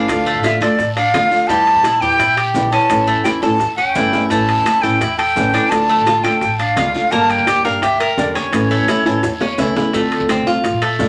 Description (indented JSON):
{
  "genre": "latin, Cuban son and guajira",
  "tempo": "171 BPM",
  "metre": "4/4",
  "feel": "straight",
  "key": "unclear",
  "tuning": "A4 = 440 Hz",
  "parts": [
    { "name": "breathy bright jazz flute", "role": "melody", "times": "0.0-9.7 s", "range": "C#5 to A5", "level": "-18 LUFS", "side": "equal", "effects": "none" },
    { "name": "flamenco guitar", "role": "accompaniment", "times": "0.0-11.1 s", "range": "D3 to G4", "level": "-22 LUFS", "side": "equal", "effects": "none" },
    { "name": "Cuban tres", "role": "arpeggios", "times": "0.0-11.1 s", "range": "G3 to Bb4", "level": "-22 LUFS", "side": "equal", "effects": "none" },
    { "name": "upright bass", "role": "bass", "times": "0.1-11.1 s", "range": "G1 to Bb2", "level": "-28 LUFS", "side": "equal", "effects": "none" },
    { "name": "bongos", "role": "percussion", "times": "0.1-11.1 s", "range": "none", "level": "-29 LUFS", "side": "equal", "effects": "none" },
    { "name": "guiro", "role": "percussion", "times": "0.1-11.1 s", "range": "none", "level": "-35 LUFS", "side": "equal", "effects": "none" },
    { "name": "maracas", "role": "percussion", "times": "0.1-11.1 s", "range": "none", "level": "-42 LUFS", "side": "equal", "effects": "none" },
    { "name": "timbales", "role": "percussion", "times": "0.1-11.1 s", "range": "none", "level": "-27 LUFS", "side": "equal", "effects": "none" }
  ],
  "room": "moderate club reverb, RT60 0.5 s",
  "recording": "none",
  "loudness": "-15 LUFS",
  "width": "mono",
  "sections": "0.0-9.9 A section; 9.9-11.1 B section",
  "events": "drum fill 3.4-4.3, 9.1-9.9",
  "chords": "0.1 Dm; 1.5 Edim; 2.9 A; 5.7 Dm; 7.1 Gm; 8.5 A; 9.9 Dm7",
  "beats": "| 0.09 0.44 0.79 1.14 | 1.50 1.85 2.20 2.55 | 2.90 3.25 3.60 3.96 | 4.31 4.66 5.01 5.36 | 5.71 6.07 6.42 6.77 | 7.12 7.47 7.83 8.18 | 8.53 8.88 9.23 9.58 | 9.94 10.29 10.64 10.99"
}